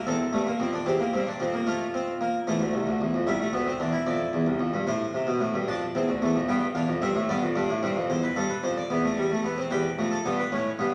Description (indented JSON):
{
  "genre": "classical, baroque-style 4-part fugue for harpsichord",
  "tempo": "74 BPM (dotted quarters)",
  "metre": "12/8",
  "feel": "straight",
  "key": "unclear",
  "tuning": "A4 = 440 Hz",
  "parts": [
    { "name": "harpsichord", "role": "solo", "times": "0.0-10.9 s", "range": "C2 to A5", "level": "-27 LUFS", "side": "equal", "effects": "none" }
  ],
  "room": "wet recital hall reverb, RT60 1.4 s",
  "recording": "none",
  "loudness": "-27 LUFS",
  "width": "mono",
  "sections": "0.0-9.7 A section; 9.7-10.9 B section",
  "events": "none",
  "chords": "0.1 C/E; 1.7 F; 3.3 C; 4.9 Am; 6.5 C/E; 9.7 A7/E"
}